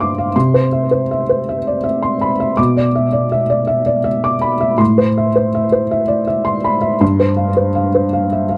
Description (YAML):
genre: neoclassical minimalist piano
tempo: 54 BPM (dotted quarters)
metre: 6/8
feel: rubato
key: C major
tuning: A4 = 439 Hz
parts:
  - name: felt-muted upright piano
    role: solo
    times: 0.0-8.6 s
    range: G2 to D6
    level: -16 LUFS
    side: equal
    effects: none
room: little or no reverb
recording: dry, close 1970s-style studio recording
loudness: -15 LUFS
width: mono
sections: 0.0-8.6 A section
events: none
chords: 0.3 Cmaj7; 2.6 E5/B; 4.8 Amadd9; 7.0 G7sus4